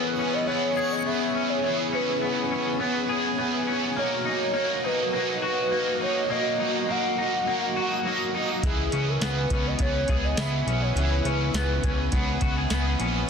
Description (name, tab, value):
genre	dream pop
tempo	103 BPM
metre	4/4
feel	straight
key	unclear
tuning	A4 = 440 Hz
part	warbly nostalgic lead	melody	0.0-12.4 s	G#4 to F#5	-29 LUFS	equal	chorus, ping-pong delay
part	overdriven electric guitar	accompaniment	0.0-13.3 s	B2 to G#4	-29 LUFS	right 4 dB	harmonic tremolo, ensemble chorus
part	soft string machine	sustained chords	0.0-13.3 s	F#4 to D#6	-33 LUFS	equal	ensemble chorus
part	clean electric guitar	arpeggios	0.0-13.3 s	E3 to G#4	-28 LUFS	left 4 dB	lush chorus, ping-pong delay
part	fat analog bass	bass	8.6-13.3 s	A#1 to C#2	-27 LUFS	equal	none
part	soft vintage rhythm box	drums	8.6-13.1 s	hi-hat, kick drum, snare drum, tambourine	-28 LUFS	equal	none
room	light reverb, digital ambience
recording	dense, heavily limited modern master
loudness	-23 LUFS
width	side -6 dB against mid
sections	0.0-13.3 A section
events	none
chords	0.0 C#m7; 4.0 Bmaj7; 8.6 C#m7